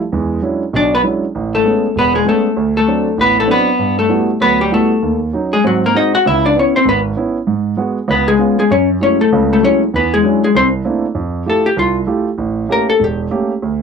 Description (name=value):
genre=jazz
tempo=196 BPM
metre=4/4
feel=swing 60% on 8ths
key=A major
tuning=A4 = 440 Hz
part: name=warm grand piano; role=accompaniment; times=0.1-13.8 s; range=E1 to G4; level=-16 LUFS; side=right 4 dB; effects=none
part: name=vintage hollow-body jazz guitar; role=melody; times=0.8-13.2 s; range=F#3 to F#5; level=-12 LUFS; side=left 3 dB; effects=none
room=light reverb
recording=dry, close 1970s-style studio recording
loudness=-12 LUFS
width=side -6 dB against mid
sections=0.0-1.3 A section; 1.3-11.2 B section; 11.2-13.8 C section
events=hollow-body jazz guitar solo 11.2-13.8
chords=0.1 E13; 1.3 Amaj9; 2.6 D7; 3.8 Gmaj13; 5.0 D#m7b5; 5.6 G#7; 6.2 C#m7; 7.5 G#m7; 8.1 C#7; 8.7 F#m9; 9.9 E13; 10.5 C13; 11.2 Fmaj9; 12.4 A7b9